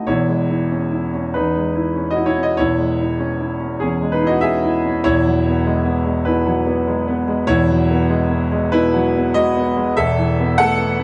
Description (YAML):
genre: neoclassical minimalist piano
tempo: 97 BPM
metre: 4/4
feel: rubato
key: unclear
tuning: A4 = 440 Hz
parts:
  - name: clear concert grand piano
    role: solo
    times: 0.0-11.0 s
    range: E1 to F#5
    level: -18 LUFS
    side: equal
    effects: none
room: moderate booth ambience, RT60 0.2 s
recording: none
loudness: -18 LUFS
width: mono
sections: 0.1-11.0 A section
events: none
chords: 0.1 C#m/E; 10.0 Asus2/E